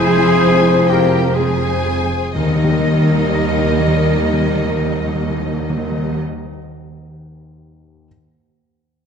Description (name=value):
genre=cinematic, emotional film score for orchestra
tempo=58-74 BPM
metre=3/4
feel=rubato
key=Eb major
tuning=A4 = 440 Hz
part: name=rich studio violin section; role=melody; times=0.0-6.2 s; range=Eb5 to Ab5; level=-26 LUFS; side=left 3 dB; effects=none
part: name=large flute ensemble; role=second line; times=0.0-6.2 s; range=Bb4 to Eb5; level=-23 LUFS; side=left 3 dB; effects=none
part: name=warm clarinet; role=second line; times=0.0-6.2 s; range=G4 to Bb4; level=-24 LUFS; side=left 2 dB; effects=none
part: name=warm studio violin section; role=second line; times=0.0-6.2 s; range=Eb4 to Ab4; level=-28 LUFS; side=left 2 dB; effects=none
part: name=dark grand piano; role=accompaniment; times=0.0-8.1 s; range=Eb2 to Eb5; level=-23 LUFS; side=left 1 dB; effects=none
part: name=rich studio viola section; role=accompaniment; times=0.0-6.2 s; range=G3 to F4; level=-24 LUFS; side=right 2 dB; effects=none
part: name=dark French horn section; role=sustained chords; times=0.0-6.2 s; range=F3 to C5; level=-24 LUFS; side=left 5 dB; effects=none
part: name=rich studio cello section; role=bass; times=0.0-6.2 s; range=Eb2 to F2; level=-21 LUFS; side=right 3 dB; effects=none
part: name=rich studio double bass section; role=bass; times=0.0-6.2 s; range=F1 to Eb2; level=-25 LUFS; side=right 4 dB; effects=none
part: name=timpani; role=percussion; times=2.3-6.2 s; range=Eb3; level=-21 LUFS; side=equal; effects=none
room=wet scoring stage reverb, RT60 1.9 s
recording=dark, warm production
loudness=-14 LUFS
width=side -6 dB against mid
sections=0.0-2.3 A section; 2.3-8.1 B section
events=slowing down 0.0-2.3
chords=0.0 Fm; 2.3 Eb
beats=0.47 1.35 | 2.34 3.32 4.27 | 5.21 6.15 7.10